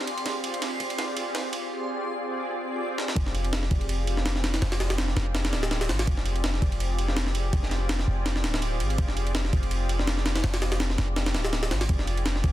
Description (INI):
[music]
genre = drum and bass, jungle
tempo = 165 BPM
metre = 4/4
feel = swing 55% on 16ths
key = F dorian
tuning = A4 = 439 Hz
[part]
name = lush unison pad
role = sustained chords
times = 0.0-12.5 s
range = C4 to D5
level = -32 LUFS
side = equal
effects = chorus, vintage 12-bit sampler grit
[part]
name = warm 808-style bass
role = bass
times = 0.0-12.5 s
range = D1 to Ab1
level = -27 LUFS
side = equal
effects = high-pass filter
[part]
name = backwards swelling texture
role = texture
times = 0.0-1.7 s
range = C6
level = -36 LUFS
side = right 1 dB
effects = built-in reverb
[part]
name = breakbeat sampler-style drum kit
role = drums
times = 0.1-12.5 s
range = kick drum, ride cymbal, snare drum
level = -28 LUFS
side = equal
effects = high-pass filter on snare, high-pass filter on cymbals, high-pass filter on kick
[sound]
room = light reverb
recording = dense, heavily limited modern master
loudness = -24 LUFS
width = side -14 dB against mid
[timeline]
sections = 0.0-3.2 A section; 3.2-12.5 B section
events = build-up 0.0-3.2; drum fill 0.3-1.7, 3.0; drop 3.2-12.5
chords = 0.0 Fm69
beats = | 0.26 0.62 0.98 1.35 | 1.71 2.07 2.44 2.80 | 3.17 3.53 3.89 4.26 | 4.62 4.98 5.35 5.71 | 6.07 6.44 6.80 7.17 | 7.53 7.89 8.26 8.62 | 8.98 9.35 9.71 10.07 | 10.44 10.80 11.16 11.53 | 11.89 12.26